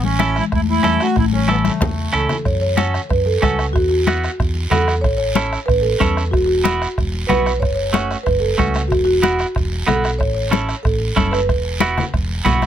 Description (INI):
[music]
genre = latin, cumbia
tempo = 186 BPM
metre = 4/4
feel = straight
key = A major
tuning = A4 = 440 Hz
[part]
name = accordion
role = melody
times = 0.0-2.3 s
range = A3 to F#4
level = -22 LUFS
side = right 5 dB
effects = none
[part]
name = marimba with soft mallets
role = second line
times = 0.0-12.4 s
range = C#3 to C#5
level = -20 LUFS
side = equal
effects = none
[part]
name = fingered electric bass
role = bass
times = 0.0-12.7 s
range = E1 to F#2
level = -22 LUFS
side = equal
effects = none
[part]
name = congas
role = percussion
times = 0.0-12.7 s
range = none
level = -22 LUFS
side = left 7 dB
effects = none
[part]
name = clean electric guitar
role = accompaniment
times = 0.2-12.7 s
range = A3 to A4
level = -19 LUFS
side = right 4 dB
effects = none
[part]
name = bombo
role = percussion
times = 0.2-12.7 s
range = none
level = -22 LUFS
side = right 1 dB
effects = none
[part]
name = guiro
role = percussion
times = 0.2-12.7 s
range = none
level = -31 LUFS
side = right 4 dB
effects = none
[sound]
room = light reverb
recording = close, detailed microphones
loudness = -15 LUFS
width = side -10 dB against mid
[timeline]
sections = 0.0-2.5 A section; 2.5-12.7 B section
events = drum fill 1.5-2.5; marimba solo 2.5-12.7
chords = 0.0 A; 2.5 F#m; 3.8 Esus2; 5.0 A; 6.3 Esus2; 7.6 F#m; 8.9 Esus2; 10.2 A; 11.5 Esus2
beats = 0.20 0.52 0.85 | 1.17 1.49 1.81 2.14 | 2.46 2.78 3.10 3.43 | 3.75 4.07 4.40 4.72 | 5.04 5.36 5.69 6.01 | 6.33 6.65 6.97 7.30 | 7.62 7.94 8.27 8.59 | 8.91 9.23 9.55 9.88 | 10.20 10.52 10.85 11.17 | 11.49 11.82 12.14 12.46